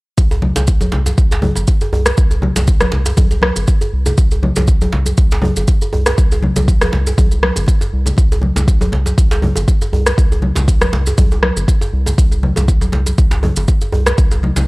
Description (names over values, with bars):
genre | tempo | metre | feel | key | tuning
afro house | 120 BPM | 4/4 | swing 54% on 16ths | unclear | A4 = 441 Hz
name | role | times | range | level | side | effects
round analog bass | bass | 0.2-14.7 s | G1 to C2 | -17 LUFS | equal | sidechain pumping
electronic kick drum | drums | 0.2-14.3 s | none | -12 LUFS | equal | overdrive
electronic shaker and rim click | drums | 0.2-14.7 s | none | -19 LUFS | equal | overdrive
congas | percussion | 0.2-14.7 s | none | -20 LUFS | left 1 dB | none
djembe | percussion | 0.3-14.7 s | none | -22 LUFS | right 1 dB | none
room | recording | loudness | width
little or no reverb | dry, gritty hardware recording | -12 LUFS | side -24 dB against mid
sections
0.2-14.7 A section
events
none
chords
none